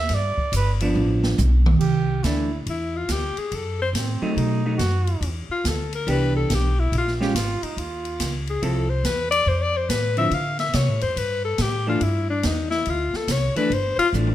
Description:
jazz, small-group swing and bop; 141 BPM; 4/4; swing 65% on 8ths; C major; A4 = 440 Hz
breathy trumpet; second line; 0.0-8.3 s; C4 to E5; -29 LUFS; right 4 dB
upright bass; bass; 0.0-14.3 s; G1 to D3; -23 LUFS; equal
open jazz drum kit; drums; 0.1-14.3 s; crash cymbal, hi-hat, kick drum, ride cymbal, snare drum, toms; -29 LUFS; right 2 dB
vintage hollow-body jazz guitar; accompaniment; 0.8-14.3 s; D3 to A4; -25 LUFS; right 1 dB
breathy alto saxophone; melody; 2.7-14.1 s; D4 to F5; -24 LUFS; left 3 dB; plate reverb
moderate large studio reverb, RT60 0.9 s; -20 LUFS; side -13 dB against mid
0.0-1.8 A section; 1.8-14.3 B section
trumpet solo 0.0-1.8; drum fill 1.0-1.8, 14.1
0.1 G7; 1.8 C69; 3.5 F#dim; 4.4 B7; 5.2 Em7; 6.9 Bbm7; 7.8 Ebsus2; 8.6 Fmaj7; 10.3 Dm7; 11.2 Gsus2; 12.0 C69

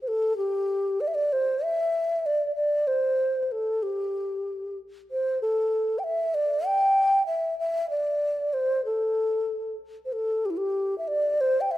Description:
chinese traditional; 96 BPM; 4/4; rubato; G zhi mode; A4 = 440 Hz
mellow low xiao; solo; 0.0-11.8 s; E4 to G5; -24 LUFS; equal
moderate concert hall reverb, RT60 2.0 s; -23 LUFS; side -14 dB against mid
0.0-11.8 A section

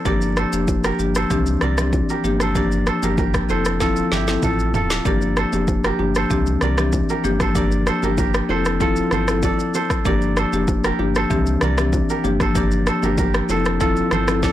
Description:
afrobeats; 96 BPM; 4/4; straight; G dorian; A4 = 440 Hz
kora; riff; 0.0-14.5 s; E4 to D5; -24 LUFS; right 5 dB; tape echo
marimba with medium mallets; accompaniment; 0.1-14.5 s; E3 to A4; -21 LUFS; left 3 dB
warm sub bass; bass; 0.1-14.5 s; D1 to C2; -24 LUFS; equal
deep house drum kit; drums; 0.1-14.5 s; kick drum, rim click, shaker, snare drum, toms; -23 LUFS; equal
congas and bongos; percussion; 0.1-14.5 s; -30 LUFS; right 2 dB
light reverb; blown-out, overdriven recording, overdrive; -17 LUFS; side -13 dB against mid
0.0-5.1 A section; 5.1-14.5 B section
drum fill 3.8-5.1
0.1 Gm7; 1.3 Cadd9; 2.2 Gm7; 3.5 Fmaj7; 5.1 Gm7; 6.3 Cadd9; 7.2 Gm7; 8.5 Fmaj7; 10.1 Gm7; 11.3 Cadd9; 12.2 Gm7; 13.5 Fmaj7

